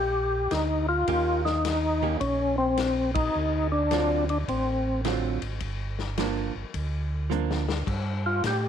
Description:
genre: soul jazz organ trio.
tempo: 106 BPM.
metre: 4/4.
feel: swing 67% on 8ths.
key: G minor.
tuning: A4 = 442 Hz.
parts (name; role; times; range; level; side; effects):
percussive tonewheel organ; melody; 0.0-8.7 s; C4 to G4; -25 LUFS; left 2 dB; slow rotary speaker, overdrive, chorus vibrato.
mellow tonewheel organ; bass; 0.0-8.7 s; G1 to A2; -29 LUFS; right 1 dB; slow rotary speaker.
vintage drum kit; drums; 0.5-8.6 s; crash cymbal, hi-hat, kick drum, ride cymbal, snare drum, toms; -34 LUFS; left 6 dB; none.
archtop guitar, miked and amplified; accompaniment; 1.1-7.7 s; D3 to G4; -31 LUFS; right 13 dB; none.
room: light reverb, small room ambience.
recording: 1960s-style stereo with parts hard left and right.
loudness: -24 LUFS.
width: side -8 dB against mid.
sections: 0.0-7.9 A section.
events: band accent 3.1; drum fill 7.3-7.9.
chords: 0.0 Eb7; 3.3 D7#9; 5.6 Gm7; 7.9 G7(no3).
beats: 0.51 | 1.08 1.65 2.21 2.78 | 3.34 3.91 4.48 5.04 | 5.61 6.17 6.74 7.30 | 7.87 8.44.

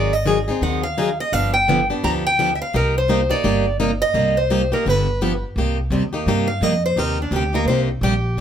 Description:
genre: acoustic string swing (jazz manouche).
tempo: 170 BPM.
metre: 4/4.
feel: swing 60% on 8ths.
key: C minor.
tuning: A4 = 436 Hz.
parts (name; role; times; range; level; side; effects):
picked steel-string acoustic guitar; melody; 0.0-8.4 s; D4 to Bb5; -20 LUFS; right 1 dB; none.
picked plugged-in swing-style acoustic guitar; accompaniment; 0.0-8.4 s; C3 to Ab4; -21 LUFS; left 1 dB; none.
upright bass; bass; 0.0-8.4 s; G1 to G2; -23 LUFS; equal; none.
room: light reverb.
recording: none.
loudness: -17 LUFS.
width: side -9 dB against mid.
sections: 0.0-5.6 A section; 5.6-8.4 B section.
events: steel-string acoustic guitar solo 5.6-8.4.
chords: 0.0 Ab7; 1.3 G7; 2.7 Cm7; 4.9 G7; 5.6 Cm7.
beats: 0.27 0.62 0.98 | 1.33 1.68 2.04 2.39 | 2.74 3.09 3.44 3.80 | 4.15 4.50 4.85 5.20 | 5.55 5.91 6.26 6.61 | 6.96 7.31 7.66 8.02 | 8.37.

